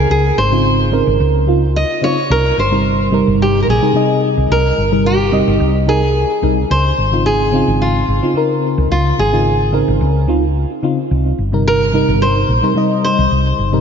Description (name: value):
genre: sunset chillout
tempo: 109 BPM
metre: 4/4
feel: swing 53% on 16ths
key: Ab major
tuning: A4 = 440 Hz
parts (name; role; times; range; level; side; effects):
- nylon-string guitar; melody; 0.0-13.8 s; F4 to Eb5; -17 LUFS; equal; tape echo
- mellow FM electric piano; accompaniment; 0.0-13.8 s; C3 to Eb5; -16 LUFS; moving between left 5 dB and right 4 dB; chorus, phaser, auto-pan, low-pass filter, tape echo
- woody fretless electric bass; bass; 0.0-13.8 s; G1 to Db2; -16 LUFS; equal; none
room: moderate lush hall reverb, RT60 2.6 s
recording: dreamy mix soaked in reverb, nothing above 7.8 kHz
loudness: -12 LUFS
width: side -7 dB against mid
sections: 0.0-13.8 A section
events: none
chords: 0.0 Dbmaj9; 2.3 Abmaj9; 6.7 Dbmaj9; 11.1 Eb6/G